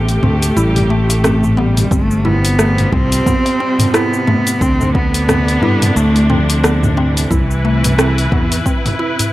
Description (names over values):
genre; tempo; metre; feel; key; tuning
organic downtempo; 89 BPM; 4/4; swing 57% on 16ths; unclear; A4 = 440 Hz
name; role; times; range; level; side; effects
clear studio string section; sustained chords; 0.0-9.3 s; C3 to B4; -21 LUFS; equal; vintage 12-bit sampler grit, sidechain pumping
mallet-like synth pluck; arpeggios; 0.0-9.3 s; A3 to E4; -20 LUFS; equal; chorus, tape echo
sustaining fretless electric bass; bass; 0.0-8.6 s; G1 to G2; -15 LUFS; equal; none
deep house drum kit; drums; 0.1-9.3 s; cabasa, hi-hat, rim click, toms; -18 LUFS; equal; overdrive
warm cello; melody; 0.2-9.3 s; E3 to C4; -18 LUFS; equal; tape echo
darbuka; percussion; 0.2-9.3 s; none; -24 LUFS; left 1 dB; none
electronic kick drum; drums; 1.9-8.8 s; none; -18 LUFS; equal; overdrive
room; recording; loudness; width
little or no reverb; dry, gritty hardware recording; -11 LUFS; side -16 dB against mid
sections
0.0-9.3 A section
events
none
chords
0.0 Am7; 1.9 G7sus4; 4.6 Dm7; 7.3 Cmaj7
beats
0.57 1.24 | 1.92 2.59 3.26 3.94 | 4.61 5.29 5.96 6.63 | 7.31 7.98 8.66